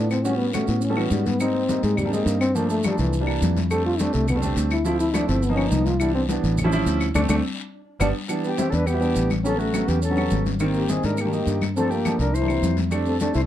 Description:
Afro-Cuban jazz; 209 BPM; 4/4; straight; A4 = 440 Hz
dark trombone; melody; 0.0-13.4 s; E3 to A4; -25 LUFS; left 2 dB; plate reverb
warm grand piano; accompaniment; 0.0-13.5 s; Eb3 to A4; -25 LUFS; right 2 dB
fingered electric bass; bass; 0.0-13.5 s; G1 to A2; -24 LUFS; equal
claves; percussion; 0.1-13.1 s; -33 LUFS; left 4 dB
congas; percussion; 0.1-13.5 s; -30 LUFS; left 4 dB
guiro; percussion; 0.1-13.5 s; -38 LUFS; left 7 dB
maracas; percussion; 0.1-13.5 s; -39 LUFS; right 7 dB
silver concert flute; second line; 8.5-13.4 s; F#4 to C5; -29 LUFS; left 2 dB
light reverb; dark, warm production; -20 LUFS; side -11 dB against mid
0.0-8.3 A section; 8.3-13.5 B section
trombone solo 0.0-8.3; band accent 7.2-8.3
0.3 A13; 1.4 Abmaj9; 2.6 Gm9; 3.1 C9; 3.7 F69; 4.9 Dm9; 5.4 G7alt; 6.0 Cmaj9; 6.6 A7b13; 7.2 D5; 7.7 G; 8.3 A9sus4; 9.5 A13; 10.6 Abmaj9; 11.8 Gm9; 12.3 C7; 12.9 F69

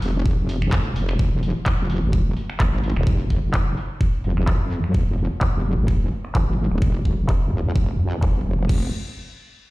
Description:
bass house; 128 BPM; 4/4; swing 55% on 16ths; F minor; A4 = 440 Hz
wobble bass; bass; 0.0-8.9 s; Eb1 to F2; -21 LUFS; equal; chorus, tube saturation, sidechain pumping
garage drum kit; drums; 0.0-8.8 s; crash cymbal, finger snaps, handclaps, hi-hat; -32 LUFS; equal; low-pass filter on snare, low-pass filter on hats, low-pass filter on cymbals, low-pass filter on room
electronic kick drum; drums; 0.3-8.8 s; -20 LUFS; equal
little or no reverb; played on a big sound system in a bare room, stone room reverb; -19 LUFS; side -20 dB against mid
0.0-8.7 A section; 8.7-9.7 B section
filter sweep on drum 0.0-8.7

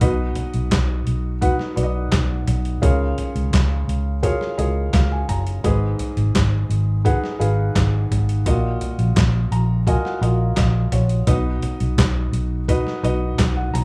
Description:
piano-driven pop; 85 BPM; 4/4; straight; A4 = 440 Hz
felt-muted upright piano; accompaniment; 0.0-13.8 s; G#2 to A#5; -27 LUFS; equal
vintage muted fingered electric bass; bass; 0.0-13.8 s; F#1 to C#2; -22 LUFS; equal
boom bap sampler-style drum kit; drums; 0.0-13.8 s; handclaps, hi-hat, kick drum, snare drum, toms; -24 LUFS; equal
light reverb; rough home demo mix, small room ambience; -20 LUFS; mono
0.0-13.8 A section
felt piano fill 4.2-5.6, 9.2-11.3
0.0 B; 2.8 C#6; 5.6 G#m; 8.5 D#madd9/A#; 11.3 B

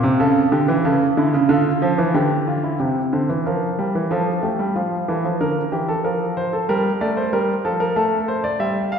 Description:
classical, baroque-style two-part invention for grand piano; 92 BPM; 4/4; straight; A4 = 442 Hz
warm grand piano; solo; 0.0-9.0 s; C3 to F5; -17 LUFS; right 1 dB
wet concert hall reverb, RT60 1.9 s; recorded in a church or concert hall; -17 LUFS; side -7 dB against mid
0.0-2.8 A section; 2.8-9.0 B section
0.2 A/C#; 1.5 Dm; 2.8 C; 4.1 F; 5.4 Bb/D; 6.7 Bbmaj13; 8.0 D5/A

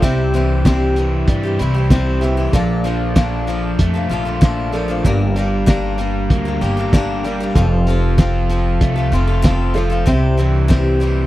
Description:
folk rock and heartland rock; 96 BPM; 4/4; straight; A4 = 438 Hz
dark upright piano; accompaniment; 0.0-11.2 s; G4 to F5; -28 LUFS; right 2 dB
picked swing-style acoustic guitar; accompaniment; 0.0-11.3 s; G2 to Bb4; -22 LUFS; left 3 dB
crunchy overdriven guitar; riff; 0.0-11.3 s; F2 to G4; -22 LUFS; right 1 dB
upright bass; bass; 0.0-11.3 s; F1 to G2; -18 LUFS; equal
cloth-damped thuddy drum kit; drums; 0.0-11.2 s; hi-hat, kick drum, snare drum; -14 LUFS; equal
little or no reverb; dry, close 1970s-style studio recording; -14 LUFS; side -15 dB against mid
0.0-11.3 A section
0.0 C; 2.5 Bbmaj7; 5.0 Gm; 7.6 F; 10.1 C

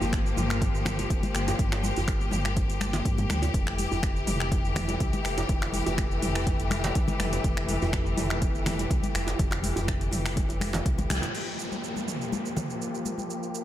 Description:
afro house; 123 BPM; 4/4; straight; G dorian; A4 = 440 Hz
clear studio string section; sustained chords; 0.0-13.6 s; E3 to G4; -32 LUFS; left 2 dB; sidechain pumping, low-pass filter
dark detuned saw bass; bass; 0.0-11.2 s; F1 to G2; -31 LUFS; equal; sidechain pumping
deep house drum kit; drums; 0.0-13.6 s; crash cymbal, finger snaps, hi-hat, shaker, toms; -34 LUFS; equal; overdrive, studio reverb
djembe; percussion; 0.0-11.3 s; -36 LUFS; right 3 dB
electronic kick drum; drums; 0.1-11.0 s; -29 LUFS; equal; overdrive, studio reverb
congas; percussion; 0.4-13.3 s; -35 LUFS; left 2 dB
downlifter; sound effects; 11.3-13.6 s; -37 LUFS; equal
light reverb; -25 LUFS; side -12 dB against mid
0.0-11.3 A section; 11.3-13.6 B section
band accent 11.1; filter sweep on string section 11.3-13.6
0.0 Gm7; 3.5 Fmaj9; 11.3 Gm7

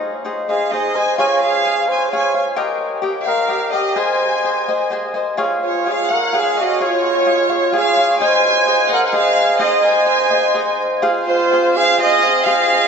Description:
mexican folk, mariachi; 128 BPM; 3/4; rubato; Ab major, Db major from 5.4 s; A4 = 436 Hz
cavaquinho; accompaniment; 0.0-12.9 s; Eb4 to Ab5; -19 LUFS; left 2 dB
clear chamber violin section; melody; 0.5-12.9 s; C5 to Ab5; -17 LUFS; right 1 dB
mellow trumpet; second line; 0.5-12.9 s; F4 to Db5; -20 LUFS; right 3 dB
rich studio violin section; sustained chords; 11.0-12.9 s; C4 to F5; -26 LUFS; left 2 dB
wet cathedral reverb, RT60 5.8 s; recorded in a church or concert hall, nothing above 7.9 kHz; -14 LUFS; side -6 dB against mid
0.0-5.4 A section; 5.4-12.9 B section
0.0 Ab; 1.2 Db; 2.6 Eb; 4.0 Ab; 5.4 Db; 8.2 Ab; 11.0 Fm

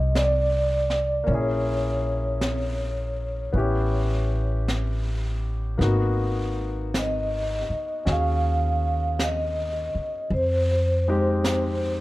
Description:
jazz ballad; 53 BPM; 4/4; swing 68% on 8ths; A4 = 440 Hz
vibraphone with soft mallets; melody; 0.0-12.0 s; C5 to F5; -26 LUFS; equal
warm grand piano; accompaniment; 0.0-12.0 s; Ab3 to Ab4; -30 LUFS; left 2 dB
upright bass; bass; 0.0-12.0 s; Ab1 to F2; -25 LUFS; equal
jazz brush drum kit; drums; 0.2-12.0 s; brushed snare drum, hi-hat, snare drum; -32 LUFS; right 1 dB
light reverb; dark, warm production; -22 LUFS; side -18 dB against mid
0.0-12.0 A section
0.0 Fm9 (rootless); 1.3 Bbm7b5; 3.5 A9; 5.8 Abm9; 10.3 Fm9

